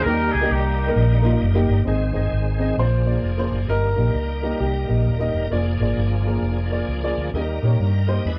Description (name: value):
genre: gospel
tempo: 132 BPM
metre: 4/4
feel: swing 63% on 8ths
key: unclear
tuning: A4 = 440 Hz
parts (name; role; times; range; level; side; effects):
- mellow horn section; melody; 0.0-1.4 s; Bb3 to Bb4; -26 LUFS; equal; none
- bright tonewheel organ; sustained chords; 0.0-8.4 s; Eb3 to Bb5; -32 LUFS; equal; fast rotary speaker, overdrive, chorus vibrato
- vintage muted fingered electric bass; bass; 0.0-8.4 s; Eb1 to Bb2; -23 LUFS; equal; none
- dark upright piano; accompaniment; 0.1-8.4 s; G2 to Eb5; -28 LUFS; equal; none
- warm concert grand piano; melody; 2.8-5.3 s; G4 to C5; -29 LUFS; equal; none
room: moderate studio ambience, RT60 0.5 s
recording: band playing live in one room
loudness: -21 LUFS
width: mono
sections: 0.0-1.9 A section; 1.9-8.4 B section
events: none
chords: 0.1 Eb; 1.9 Ab; 2.8 Bb7; 3.7 Eb/G; 5.5 Bb7/F; 7.3 Eb